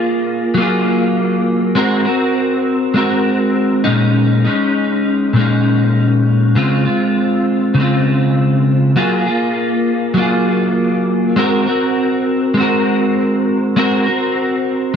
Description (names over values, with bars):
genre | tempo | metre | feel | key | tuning
indie pop | 100 BPM | 4/4 | swing 55% on 16ths | unclear | A4 = 440 Hz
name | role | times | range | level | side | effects
electric guitar at the edge of break-up | solo | 0.0-15.0 s | Bb2 to Bb4 | -13 LUFS | equal | ensemble chorus, warbly pitch drift
room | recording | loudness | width
light reverb | none | -13 LUFS | side -7 dB against mid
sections
0.0-15.0 A section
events
none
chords
0.0 Gbmaj9; 1.8 Ab9; 3.9 Bbm7; 6.6 Dbmaj7; 9.0 Gbmaj9; 11.4 Ab9